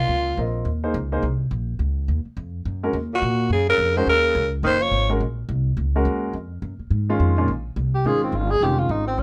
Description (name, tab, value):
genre	modal jazz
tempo	211 BPM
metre	4/4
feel	swing 60% on 8ths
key	Eb dorian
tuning	A4 = 440 Hz
part	growling alto saxophone	melody	0.0-0.6, 3.1-5.1 s	F4 to Db5	-22 LUFS	equal	none
part	mellow tenor saxophone	second line	0.0-0.5, 3.1-5.1, 7.9-9.2 s	Bb2 to Ab4	-28 LUFS	equal	none
part	upright bass	bass	0.0-9.2 s	F1 to Bb2	-26 LUFS	equal	none
part	warm baby grand piano	accompaniment	0.4-9.2 s	Bb2 to Eb5	-27 LUFS	equal	none
room	little or no reverb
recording	none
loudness	-22 LUFS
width	mono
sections	0.0-7.5 A section; 7.5-9.2 B section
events	tenor saxophone solo 7.5-9.2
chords	0.0 Ebm9; 5.2 Gb6; 6.3 Gbmaj7sus2/F; 7.5 Bbm9